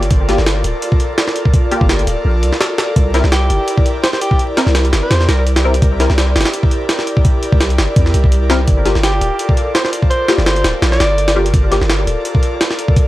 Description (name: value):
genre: drum and bass, jungle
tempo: 168 BPM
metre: 4/4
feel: swing 54% on 16ths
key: G dorian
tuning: A4 = 439 Hz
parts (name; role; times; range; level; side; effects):
- airy breathy pad; sustained chords; 0.0-13.1 s; E4 to D5; -21 LUFS; equal; chorus
- filtered dub chord stab; stabs; 0.0-6.1, 8.5-11.8 s; Bb3 to Bb4; -20 LUFS; left 2 dB; ensemble chorus, vintage 12-bit sampler grit, dub echo
- long sustained 808-style bass; bass; 0.0-12.2 s; D1 to E2; -15 LUFS; equal; none
- jungle sampler-style drum kit; drums; 0.0-13.1 s; hi-hat, kick drum, snare drum; -15 LUFS; equal; studio reverb
- breathy alto saxophone; melody; 3.3-5.4, 9.0-11.4 s; G4 to D5; -22 LUFS; equal; dub echo
room: light reverb, digital ambience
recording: dry, gritty hardware recording, vinyl crackle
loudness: -12 LUFS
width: side -16 dB against mid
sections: 0.0-13.1 A section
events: none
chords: 0.0 Gm7; 3.0 C7; 8.7 Gm7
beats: | 0.11 0.46 0.82 1.18 | 1.53 1.89 2.25 2.61 | 2.96 3.32 3.68 4.04 | 4.39 4.75 5.11 5.46 | 5.82 6.18 6.54 6.89 | 7.25 7.61 7.96 8.32 | 8.68 9.04 9.39 9.75 | 10.11 10.46 10.82 11.18 | 11.54 11.89 12.25 12.61 | 12.96